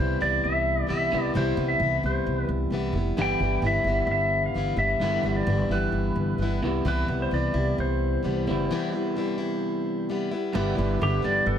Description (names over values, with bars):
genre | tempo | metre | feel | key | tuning
rock | 130 BPM | 4/4 | straight | C major | A4 = 443 Hz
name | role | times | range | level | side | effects
clean lap steel guitar | melody | 0.0-11.6 s | G4 to G5 | -27 LUFS | left 1 dB | slapback echo
picked plugged-in steel-string acoustic guitar | accompaniment | 0.0-11.6 s | G2 to E4 | -30 LUFS | left 3 dB | none
electric guitar through a small old amp | riff | 0.0-11.6 s | G2 to E4 | -29 LUFS | right 1 dB | none
upright bass | bass | 0.0-11.6 s | F1 to C2 | -27 LUFS | right 1 dB | none
warm grand piano | accompaniment | 10.5-11.6 s | E4 to B4 | -36 LUFS | right 8 dB | none
hand-pumped harmonium | sustained chords | 10.5-11.6 s | G3 to B4 | -39 LUFS | right 1 dB | none
room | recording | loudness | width
light reverb | none | -23 LUFS | side -9 dB against mid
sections
0.0-10.6 A section; 10.6-11.6 B section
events
break 8.7-10.6; electric slide guitar solo 10.6-11.6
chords
0.0 Cmaj7; 3.2 G6; 6.6 Cmaj7; 10.6 G6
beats
0.43 0.89 | 1.34 1.80 2.26 2.72 | 3.18 3.64 4.10 4.56 | 5.02 5.48 5.94 6.40 | 6.86 7.32 7.78 8.24 | 8.70 9.17 9.63 10.09 | 10.55 11.01 11.47